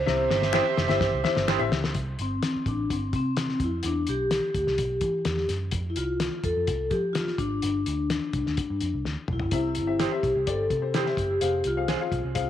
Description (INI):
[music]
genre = uptempo 1960s-style soul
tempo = 127 BPM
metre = 4/4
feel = straight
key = C major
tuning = A4 = 442 Hz
[part]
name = vibraphone with medium mallets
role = melody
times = 0.0-12.5 s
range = C4 to C5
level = -27 LUFS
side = left 1 dB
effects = none
[part]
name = vintage muted picked electric bass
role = bass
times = 0.0-12.5 s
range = F1 to F3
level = -31 LUFS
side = right 1 dB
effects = none
[part]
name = warm horn section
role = second line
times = 0.1-1.7 s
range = G4 to E5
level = -32 LUFS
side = right 11 dB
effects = none
[part]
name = warm upright piano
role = accompaniment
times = 0.1-1.8, 9.5-12.5 s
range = C3 to F5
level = -31 LUFS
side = left 10 dB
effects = none
[part]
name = cloth-damped thuddy drum kit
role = drums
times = 0.1-12.5 s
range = hi-hat, kick drum, snare drum, toms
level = -30 LUFS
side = left 3 dB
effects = none
[part]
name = electric guitar through a small old amp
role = stabs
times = 0.5-1.6, 10.0-12.0 s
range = E4 to C5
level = -33 LUFS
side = right 11 dB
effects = tape echo
[part]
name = finger snap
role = percussion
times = 0.5-1.6 s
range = none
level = -36 LUFS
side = left 9 dB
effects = none
[sound]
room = moderate spring reverb, RT60 1.9 s, studio ambience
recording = 1960s-style stereo with parts hard left and right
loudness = -24 LUFS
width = side -11 dB against mid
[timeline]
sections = 0.0-2.0 A section; 2.0-12.5 B section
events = drum fill 0.1-2.0, 9.0-9.5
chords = 0.1 C; 2.0 C5; 3.8 Em; 5.7 F; 7.6 G5; 9.5 C; 11.4 Fm